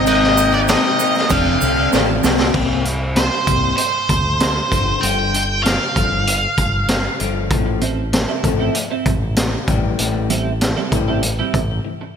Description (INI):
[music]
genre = indie rock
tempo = 97 BPM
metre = 4/4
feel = straight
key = C mixolydian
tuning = A4 = 438 Hz
[part]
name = octave-fuzz lead guitar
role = melody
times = 0.0-7.2 s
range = C5 to G5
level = -19 LUFS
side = right 1 dB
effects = distortion, ping-pong delay
[part]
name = string machine, cellos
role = sustained chords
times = 0.0-2.5 s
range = C3 to Ab4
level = -31 LUFS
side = equal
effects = none
[part]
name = electric guitar through a small old amp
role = riff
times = 0.0-12.1 s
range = G2 to Bb4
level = -23 LUFS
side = left 10 dB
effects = lush chorus
[part]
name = twelve-string electric guitar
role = riff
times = 0.0-2.5, 7.7-12.0 s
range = G3 to Bb4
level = -23 LUFS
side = right 7 dB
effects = analog chorus, ping-pong delay
[part]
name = growling fingered electric bass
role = bass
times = 0.0-11.8 s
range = F1 to D2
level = -22 LUFS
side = equal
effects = overdrive
[part]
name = raw garage drum kit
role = drums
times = 0.1-11.7 s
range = crash cymbal, hi-hat, kick drum, snare drum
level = -19 LUFS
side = equal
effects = none
[part]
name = egg shaker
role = percussion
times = 0.1-2.4 s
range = none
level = -29 LUFS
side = right 15 dB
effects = none
[sound]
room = moderate lush hall reverb, RT60 2.8 s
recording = bright 1980s-style digital production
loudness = -15 LUFS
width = side -7 dB against mid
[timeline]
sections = 0.0-2.5 A section; 2.5-12.2 B section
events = drum fill 1.9-2.5; break 11.8-12.2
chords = 0.0 Abadd9; 1.3 F6; 2.5 C5; 4.7 G5; 7.5 Fmaj7/A; 9.7 Am7